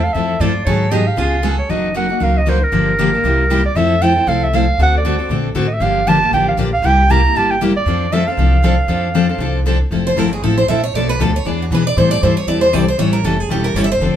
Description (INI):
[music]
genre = acoustic string swing (jazz manouche)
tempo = 234 BPM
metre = 4/4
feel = swing 56% on 8ths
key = F major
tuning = A4 = 440 Hz
[part]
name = warm clarinet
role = melody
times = 0.0-9.7 s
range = Bb4 to Bb5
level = -17 LUFS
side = right 3 dB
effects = none
[part]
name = picked acoustic archtop guitar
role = second line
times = 0.0-1.7, 10.1-14.2 s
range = F4 to E5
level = -19 LUFS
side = right 2 dB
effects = none
[part]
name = upright bass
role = bass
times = 0.0-14.1 s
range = E1 to B2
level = -18 LUFS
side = equal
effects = none
[part]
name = picked steel-string acoustic guitar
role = accompaniment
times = 0.1-14.2 s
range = B2 to A4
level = -18 LUFS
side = left 4 dB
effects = none
[part]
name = picked steel-string acoustic guitar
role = accompaniment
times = 0.2-14.2 s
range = B2 to B4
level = -23 LUFS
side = right 3 dB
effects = none
[sound]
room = moderate studio reverb, RT60 0.6 s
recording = band playing live in one room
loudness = -13 LUFS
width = side -10 dB against mid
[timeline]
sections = 0.0-1.7 A section; 1.7-9.9 B section; 9.9-14.2 C section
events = steel-string acoustic guitar solo 9.9-14.2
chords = 0.0 Fmaj7; 0.7 Abm7; 1.2 Db7; 1.7 Gb6; 2.7 Gm7; 3.2 C7; 3.8 Fmaj7; 4.8 D7; 5.8 Gm7; 6.8 C7; 7.9 F6; 9.9 Fmaj7; 10.9 Bm7b5; 11.5 E7; 12.0 Am7; 13.0 A7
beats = 0.15 0.41 | 0.67 0.93 1.18 1.44 | 1.70 1.96 2.21 2.47 | 2.73 2.98 3.24 3.50 | 3.76 4.01 4.27 4.53 | 4.78 5.04 5.30 5.55 | 5.81 6.07 6.33 6.58 | 6.84 7.09 7.35 7.61 | 7.87 8.12 8.38 8.63 | 8.89 9.15 9.40 9.66 | 9.92 10.17 10.43 10.69 | 10.94 11.20 11.45 11.71 | 11.97 12.22 12.48 12.73 | 12.99 13.25 13.50 13.76 | 14.01